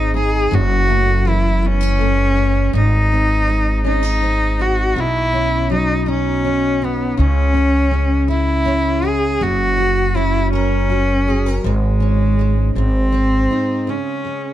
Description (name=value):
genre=six-eight pop ballad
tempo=54 BPM (dotted quarters)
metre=6/8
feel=straight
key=C# minor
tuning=A4 = 440 Hz
part: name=clear cello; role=melody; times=0.0-14.5 s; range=G#3 to G#4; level=-18 LUFS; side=equal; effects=none
part: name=picked steel-string acoustic guitar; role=accompaniment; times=0.0-14.5 s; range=F#2 to A#4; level=-21 LUFS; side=equal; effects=double-tracked left and right
part: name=upright bass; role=bass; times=0.0-13.5 s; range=F#1 to C#2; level=-18 LUFS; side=equal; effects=none
room=small room ambience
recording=dark, warm production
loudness=-14 LUFS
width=side -13 dB against mid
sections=0.0-13.9 A section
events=none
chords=0.0 G#; 0.5 F#m7; 2.7 G#; 5.0 Badd9; 7.2 C#m; 9.4 F#add9; 11.6 C#5/G#; 12.8 G#; 13.9 C#5